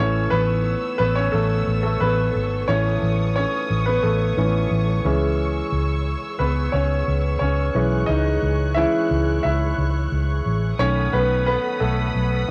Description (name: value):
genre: pop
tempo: 89 BPM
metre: 4/4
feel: straight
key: C# minor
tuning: A4 = 441 Hz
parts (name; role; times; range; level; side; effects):
- clear concert grand piano; accompaniment; 0.0-12.5 s; D#3 to E5; -24 LUFS; equal; cassette tape
- warm studio string section; sustained chords; 0.0-12.5 s; G#4 to F#6; -32 LUFS; equal; cassette tape
- vintage muted fingered electric bass; bass; 0.0-12.4 s; G#1 to C#2; -24 LUFS; equal; none
room: light reverb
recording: home recording on cassette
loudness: -21 LUFS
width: mono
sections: 0.0-12.5 A section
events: grand piano solo 0.0-12.5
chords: 0.0 A; 5.1 C#m; 10.8 B7